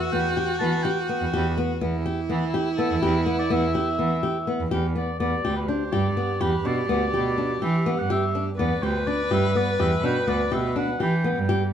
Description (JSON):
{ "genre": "contemporary instrumental, chamber music in an uneven meter", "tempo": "248 BPM (eighths)", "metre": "7/8", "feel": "straight", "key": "E minor", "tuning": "A4 = 437 Hz", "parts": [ { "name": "warm oboe", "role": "melody", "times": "0.0-11.7 s", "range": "A4 to A5", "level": "-29 LUFS", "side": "equal", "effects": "none" }, { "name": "rich viola", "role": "second line", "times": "0.0-11.7 s", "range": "E4 to B4", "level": "-28 LUFS", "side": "right 1 dB", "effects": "none" }, { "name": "flamenco guitar", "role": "arpeggios", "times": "0.1-11.6 s", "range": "B3 to G4", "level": "-27 LUFS", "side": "left 3 dB", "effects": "none" }, { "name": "bright cello", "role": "bass", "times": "0.1-11.7 s", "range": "D2 to E3", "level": "-26 LUFS", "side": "right 2 dB", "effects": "none" } ], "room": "light reverb", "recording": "dark, warm production", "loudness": "-21 LUFS", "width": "side -9 dB against mid", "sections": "0.0-5.2 A section; 5.2-11.7 B section", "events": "none", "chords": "0.0 Em; 5.2 Em7" }